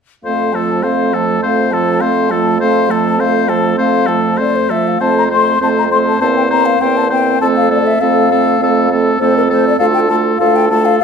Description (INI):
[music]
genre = quick classical-period movement for wind quintet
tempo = 100 BPM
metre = 4/4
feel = rubato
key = F major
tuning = A4 = 441 Hz
[part]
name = mellow hollow concert flute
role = melody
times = 0.2-11.0 s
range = Bb4 to C6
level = -16 LUFS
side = left 9 dB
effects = none
[part]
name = clear oboe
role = second line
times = 0.2-11.0 s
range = A4 to C5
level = -17 LUFS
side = left 3 dB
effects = none
[part]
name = warm clarinet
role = accompaniment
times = 0.2-11.0 s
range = A3 to F4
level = -19 LUFS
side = right 13 dB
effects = none
[part]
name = warm bassoon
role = bass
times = 0.2-11.0 s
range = D2 to F2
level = -18 LUFS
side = right 3 dB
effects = none
[part]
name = mellow French horn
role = accompaniment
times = 0.3-11.0 s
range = F3 to Bb3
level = -19 LUFS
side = right 1 dB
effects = none
[sound]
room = moderate large studio reverb, RT60 1.3 s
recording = minimal, uncompressed stereo recording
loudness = -11 LUFS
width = side -6 dB against mid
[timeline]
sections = 0.2-5.0 A section; 5.0-11.0 B section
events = none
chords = 0.2 F; 6.2 C7/E; 7.4 F; 9.8 Dm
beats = | 0.24 0.84 1.44 2.02 | 2.61 3.20 3.78 4.39 | 5.01 5.61 6.21 6.81 | 7.41 8.01 8.61 9.21 | 9.80 10.40 11.00